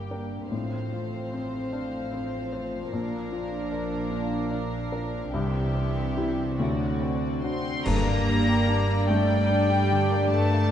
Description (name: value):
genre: cinematic, emotional film score for orchestra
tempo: 49 BPM (dotted quarters)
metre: 6/8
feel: rubato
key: unclear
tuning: A4 = 440 Hz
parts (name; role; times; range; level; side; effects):
- warm studio violin section; melody; 0.0-10.7 s; D5 to C6; -34 LUFS; left 3 dB; none
- dark studio violin section; second line; 0.0-10.7 s; A3 to D5; -33 LUFS; left 2 dB; none
- felt-muted upright piano; accompaniment; 0.0-10.7 s; C2 to C5; -33 LUFS; left 1 dB; none
- warm studio viola section; accompaniment; 0.0-10.7 s; G3 to D4; -34 LUFS; right 2 dB; none
- mellow French horn section; sustained chords; 0.0-7.5 s; E3 to D4; -36 LUFS; left 2 dB; none
- concert harp; arpeggios; 0.0-10.7 s; G2 to G5; -32 LUFS; left 4 dB; none
- dark studio double bass section; bass; 0.0-10.7 s; G1 to G2; -30 LUFS; right 2 dB; none
- warm studio cello section; bass; 0.0-10.7 s; G2 to C4; -32 LUFS; right 3 dB; none
- cymbal swell, clash cymbals and concert bass drum; percussion; 5.3-9.5 s; none; -33 LUFS; right 1 dB; none
room: moderate scoring stage reverb, RT60 1.9 s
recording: dark, warm production, nothing above 10.6 kHz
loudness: -24 LUFS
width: side -10 dB against mid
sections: 0.0-7.9 A section; 7.9-10.7 B section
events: band accent 7.9-8.7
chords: 0.0 Gm; 0.5 F/A; 2.9 Bb; 5.3 C; 6.6 D7; 7.9 Gmadd9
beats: | 0.52 1.73 | 2.92 4.12 | 5.34 6.59 | 7.86 9.10 | 10.31